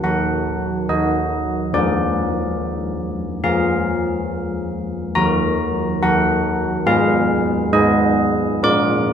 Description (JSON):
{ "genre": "classical, tune for church bells", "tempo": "70 BPM", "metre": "4/4", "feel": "straight", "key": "Eb minor", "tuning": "A4 = 441 Hz", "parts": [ { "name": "old church bells", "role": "solo", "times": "0.0-9.1 s", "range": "Eb3 to D6", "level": "-16 LUFS", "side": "equal", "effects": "none" } ], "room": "moderate concert hall reverb, RT60 2.4 s", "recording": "minimal, uncompressed stereo recording", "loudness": "-16 LUFS", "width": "side -8 dB against mid", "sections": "0.0-9.1 A section", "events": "none", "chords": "0.0 Ebm; 1.7 Bb7/F; 5.2 Ebm; 6.9 Abm; 8.6 Bb", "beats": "0.04 0.90 | 1.75 2.59 3.44 4.30 | 5.16 6.01 6.86 7.73 | 8.62" }